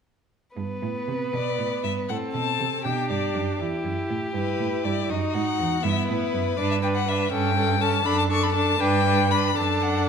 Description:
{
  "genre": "quick classical-period movement for string quartet",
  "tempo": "80 BPM (dotted quarters)",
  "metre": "6/8",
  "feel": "rubato",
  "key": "G major, D major from 6.6 s",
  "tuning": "A4 = 443 Hz",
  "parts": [
    { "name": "warm violin", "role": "second line", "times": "0.6-10.1 s", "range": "E4 to B4", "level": "-29 LUFS", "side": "left 1 dB", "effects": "none" },
    { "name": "rich viola", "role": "accompaniment", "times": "0.6-10.1 s", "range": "B3 to E4", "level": "-28 LUFS", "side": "right 2 dB", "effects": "none" },
    { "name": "rich cello", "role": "bass", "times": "0.6-10.1 s", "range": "E2 to C3", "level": "-27 LUFS", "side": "right 5 dB", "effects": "none" },
    { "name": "warm violin", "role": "melody", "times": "1.3-10.1 s", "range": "B4 to C#6", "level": "-26 LUFS", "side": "left 9 dB", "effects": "none" }
  ],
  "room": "moderate recital hall reverb, RT60 1.3 s",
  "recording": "minimal, uncompressed stereo recording",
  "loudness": "-22 LUFS",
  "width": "side -6 dB against mid",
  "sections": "0.6-10.1 A section",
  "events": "none",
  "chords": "0.6 G; 2.1 Amadd9; 2.9 G; 3.6 Em; 5.1 Emaj9; 5.8 Em/G; 6.6 G6; 7.3 A7/G; 8.1 D/F#; 8.8 G; 9.6 D/F#"
}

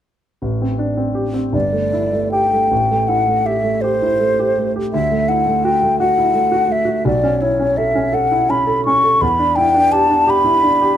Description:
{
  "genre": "classical, impressionist duo for flute and grand piano",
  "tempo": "55 BPM (dotted quarters)",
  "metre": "6/8",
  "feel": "rubato",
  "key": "unclear",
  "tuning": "A4 = 440 Hz",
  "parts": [
    { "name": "clear grand piano", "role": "accompaniment", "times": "0.4-11.0 s", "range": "G1 to A4", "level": "-18 LUFS", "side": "right 1 dB", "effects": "none" },
    { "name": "mellow hollow silver concert flute", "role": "melody", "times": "1.5-11.0 s", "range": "C5 to C#6", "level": "-15 LUFS", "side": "left 1 dB", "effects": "none" }
  ],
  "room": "moderate studio reverb, RT60 0.8 s",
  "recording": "none",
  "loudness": "-14 LUFS",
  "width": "side -10 dB against mid",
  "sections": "0.4-11.0 A section",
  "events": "none",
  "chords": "0.4 Am7; 1.5 Gsus2; 2.7 Am7; 4.9 Dadd9; 7.1 B9sus4; 9.2 Em7"
}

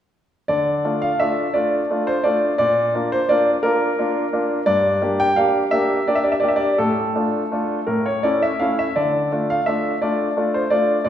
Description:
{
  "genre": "classical-period piano sonatina",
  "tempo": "57 BPM (dotted quarters)",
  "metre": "6/8",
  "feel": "straight",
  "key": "D minor",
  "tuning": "A4 = 440 Hz",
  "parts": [
    { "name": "bright grand piano", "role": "solo", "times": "0.5-11.1 s", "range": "G2 to G5", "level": "-17 LUFS", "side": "equal", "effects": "none" }
  ],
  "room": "wet recital hall reverb, RT60 1.5 s",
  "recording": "heard from further back in the room",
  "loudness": "-17 LUFS",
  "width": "side -10 dB against mid",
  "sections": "0.5-11.1 A section",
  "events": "none",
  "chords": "0.5 Dm; 2.6 Bb; 4.7 Gm; 6.8 Dm/A; 7.9 A; 9.0 Dm"
}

